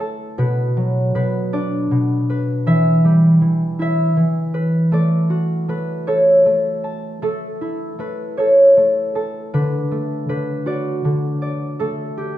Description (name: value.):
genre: children's music, lullaby.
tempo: 52 BPM (dotted quarters).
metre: 6/8.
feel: rubato.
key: D major.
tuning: A4 = 439 Hz.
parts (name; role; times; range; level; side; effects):
concert harp; solo; 0.0-12.4 s; B2 to A5; -16 LUFS; equal; none.
room: moderate recital hall reverb, RT60 1.5 s.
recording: minimal, uncompressed stereo recording.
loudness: -15 LUFS.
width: side -13 dB against mid.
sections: 0.0-12.4 A section.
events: none.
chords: 0.4 Bm; 2.7 Em; 4.9 D/A; 6.1 A; 9.5 D; 11.8 Gadd9.